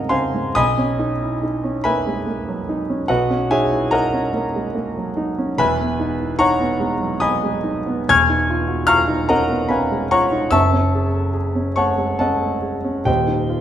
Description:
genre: classical, impressionist solo piano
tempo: 72 BPM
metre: 3/4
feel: uneven beats, rubato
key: B major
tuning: A4 = 435 Hz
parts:
  - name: warm concert grand piano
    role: solo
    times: 0.0-13.6 s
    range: Eb1 to G#6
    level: -17 LUFS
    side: equal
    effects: none
room: wet recital hall reverb, RT60 1.7 s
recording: none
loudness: -17 LUFS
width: side -10 dB against mid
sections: 0.6-13.6 A section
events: none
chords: 0.0 Dbmaj7; 0.6 Bmaj9; 5.6 Emaj7; 8.1 C#add9/E; 10.5 Gbm9; 13.1 Ebadd9

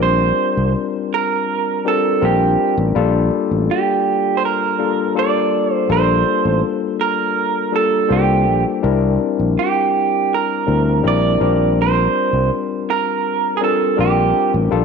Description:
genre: lush 1970s-style soul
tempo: 82 BPM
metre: 4/4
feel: straight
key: unclear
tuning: A4 = 440 Hz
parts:
  - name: electric guitar through a small old amp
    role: melody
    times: 0.0-14.5 s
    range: G4 to D5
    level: -18 LUFS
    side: right 9 dB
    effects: none
  - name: barky tine electric piano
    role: accompaniment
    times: 0.0-14.8 s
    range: G3 to C5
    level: -19 LUFS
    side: left 10 dB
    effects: overdrive
  - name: overdriven fingered electric bass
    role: bass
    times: 0.0-14.8 s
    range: A1 to D2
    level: -18 LUFS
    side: equal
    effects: none
room: moderate echo chamber reverb, RT60 1.9 s, digital ambience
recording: 1960s-style stereo with parts hard left and right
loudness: -15 LUFS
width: side -5 dB against mid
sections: 0.0-14.8 A section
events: none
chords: 0.0 Bb69; 8.8 C9; 11.4 Bb69

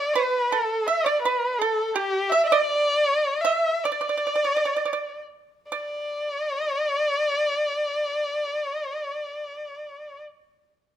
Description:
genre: chinese traditional, Chinese chamber ensemble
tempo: 57-83 BPM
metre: 2/4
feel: rubato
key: D zhi mode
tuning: A4 = 442 Hz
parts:
  - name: warm erhu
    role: melody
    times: 0.0-10.2 s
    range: G4 to E5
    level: -24 LUFS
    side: left 1 dB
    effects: none
  - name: pipa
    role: second line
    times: 0.0-10.2 s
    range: G4 to E5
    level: -25 LUFS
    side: right 6 dB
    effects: none
room: light reverb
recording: close, detailed microphones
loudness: -22 LUFS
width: side -10 dB against mid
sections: 0.0-5.7 A section; 5.7-9.8 B section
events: slowing down 2.3-5.7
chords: none

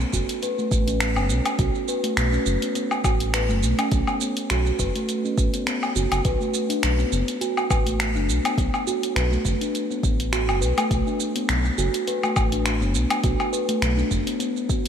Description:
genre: organic downtempo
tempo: 103 BPM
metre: 4/4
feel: swing 55% on 16ths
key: B minor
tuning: A4 = 440 Hz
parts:
  - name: round analog bass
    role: bass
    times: 0.0-14.2 s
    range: F#1 to B1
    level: -24 LUFS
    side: equal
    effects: sidechain pumping
  - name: deep house drum kit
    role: drums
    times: 0.0-14.9 s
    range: finger snaps, hi-hat, shaker, woodblock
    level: -26 LUFS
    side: equal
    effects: none
  - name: steel tongue drum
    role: arpeggios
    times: 0.1-14.8 s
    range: A3 to B4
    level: -25 LUFS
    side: equal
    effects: digital delay
  - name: electronic kick drum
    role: drums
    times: 0.1-14.8 s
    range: none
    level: -24 LUFS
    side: equal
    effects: none
room: moderate lush hall reverb, RT60 3.0 s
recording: bright 1980s-style digital production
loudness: -20 LUFS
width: side -8 dB against mid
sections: 0.0-14.9 A section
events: none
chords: 0.0 B5

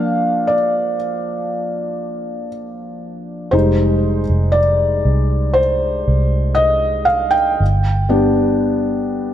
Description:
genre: pop ballad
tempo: 59 BPM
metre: 4/4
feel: straight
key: unclear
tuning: A4 = 442 Hz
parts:
  - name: felt-muted upright piano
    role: accompaniment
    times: 0.0-9.3 s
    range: F3 to G5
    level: -16 LUFS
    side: equal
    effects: none
  - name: vintage muted fingered electric bass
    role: bass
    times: 3.5-9.3 s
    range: F1 to C2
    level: -18 LUFS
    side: right 1 dB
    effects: none
room: light reverb, studio reverb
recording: faint mains hum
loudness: -14 LUFS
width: side -10 dB against mid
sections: 0.0-9.3 A section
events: felt piano solo 0.0-9.3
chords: 0.0 Bb; 3.5 Fm7; 7.6 G

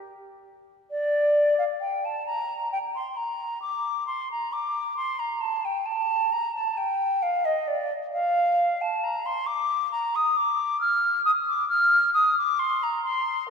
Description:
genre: classical, baroque-style fantasia for unaccompanied flute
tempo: 67 BPM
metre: 4/4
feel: rubato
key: unclear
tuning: A4 = 440 Hz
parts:
  - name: silver concert flute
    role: solo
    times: 0.9-13.5 s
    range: D5 to F6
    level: -23 LUFS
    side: equal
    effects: none
room: wet church reverb, RT60 2.8 s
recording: none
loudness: -23 LUFS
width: side -6 dB against mid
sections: 0.9-13.5 A section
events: none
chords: none

